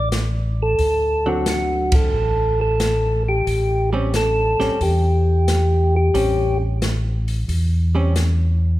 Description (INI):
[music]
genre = soul jazz organ trio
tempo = 90 BPM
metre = 4/4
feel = swing 69% on 8ths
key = unclear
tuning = A4 = 440 Hz
[part]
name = percussive tonewheel organ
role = melody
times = 0.0-6.6 s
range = F#4 to A4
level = -20 LUFS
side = equal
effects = slow rotary speaker
[part]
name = mellow tonewheel organ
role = bass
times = 0.0-8.8 s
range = A1 to E2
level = -19 LUFS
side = equal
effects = slow rotary speaker
[part]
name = open jazz drum kit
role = drums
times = 0.1-8.4 s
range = hi-hat, kick drum, ride cymbal, snare drum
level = -24 LUFS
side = equal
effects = none
[part]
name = hollow-body jazz guitar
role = accompaniment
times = 1.3-8.1 s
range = D3 to C#4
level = -26 LUFS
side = right 3 dB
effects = none
[sound]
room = moderate recital hall reverb, RT60 1.6 s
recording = recorded in a church or concert hall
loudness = -17 LUFS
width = side -16 dB against mid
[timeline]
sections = 0.0-8.8 A section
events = band accent 1.8-2.1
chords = 0.0 D7; 3.5 A7#9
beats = 0.12 | 0.79 1.46 2.13 2.80 | 3.47 4.14 4.81 5.48 | 6.15 6.82 7.49 8.16